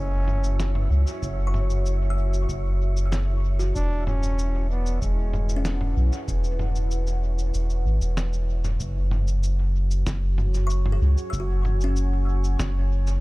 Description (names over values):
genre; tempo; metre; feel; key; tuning
ambient dub; 95 BPM; 4/4; straight; unclear; A4 = 440 Hz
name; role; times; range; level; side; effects
warm trombone; melody; 0.0-5.9 s; G#3 to D4; -36 LUFS; equal; dub echo
deep dark ambient pad; sustained chords; 0.0-13.2 s; E4 to G#5; -36 LUFS; left 1 dB; chorus, built-in reverb
kalimba; arpeggios; 0.0-13.2 s; C#4 to E6; -37 LUFS; left 1 dB; dub echo
soft dub sub bass; bass; 0.0-13.2 s; E1 to C#2; -22 LUFS; equal; tube saturation
wind-like tuned noise texture; texture; 0.0-8.8 s; E4 to C#5; -41 LUFS; right 3 dB; built-in reverb
lo-fi sampler-style drum kit; drums; 0.3-13.2 s; shaker, snare drum, toms; -34 LUFS; equal; studio ambience, dub echo
electronic kick drum; drums; 1.2-12.7 s; none; -32 LUFS; equal; none
room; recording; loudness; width
digital ambience; none; -22 LUFS; side -20 dB against mid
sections
0.0-8.8 A section; 8.8-13.2 B section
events
filter sweep on kalimba 0.0-8.8; kick drops out 7.5-8.8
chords
0.0 F#5; 3.8 E; 8.8 F#5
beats
0.60 | 1.23 1.86 2.49 3.12 | 3.75 4.38 5.02 5.65 | 6.28 6.91 7.54 8.18 | 8.81 9.44 10.07 10.70 | 11.33 11.96 12.60